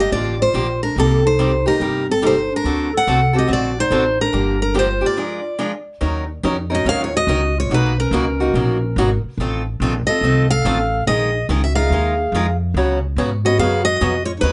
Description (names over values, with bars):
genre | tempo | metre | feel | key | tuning
acoustic string swing (jazz manouche) | 143 BPM | 4/4 | swing 64% on 8ths | G minor, Eb minor from 6.0 s | A4 = 440 Hz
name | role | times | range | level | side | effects
picked steel-string acoustic guitar | melody | 0.0-14.5 s | A4 to F#5 | -22 LUFS | equal | slapback echo
breathy clarinet | second line | 0.0-14.5 s | C4 to Bb4 | -27 LUFS | equal | none
picked steel-string acoustic guitar | accompaniment | 0.0-14.5 s | B2 to Bb4 | -23 LUFS | equal | none
upright bass | bass | 0.0-14.5 s | G1 to Ab2 | -23 LUFS | equal | none
room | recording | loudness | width
moderate studio ambience, RT60 0.5 s | nothing above 10.9 kHz | -18 LUFS | mono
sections
0.0-6.0 A section; 6.0-14.5 B section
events
break 5.2-6.0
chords
0.0 Gm7; 1.0 Cm7; 2.7 D7b9b13; 4.3 Gm7; 5.2 Bb7; 6.0 Ebm7; 7.7 Bmaj9; 9.4 F7/A; 11.1 Bb7sus4; 12.7 Db9sus4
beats
0.13 0.55 | 0.97 1.39 1.81 2.23 | 2.65 3.08 3.50 3.92 | 4.34 4.76 5.18 5.60 | 6.02 6.44 6.87 7.29 | 7.71 8.13 8.55 8.97 | 9.39 9.81 10.23 10.65 | 11.07 11.49 11.91 12.33 | 12.75 13.17 13.59 14.01 | 14.43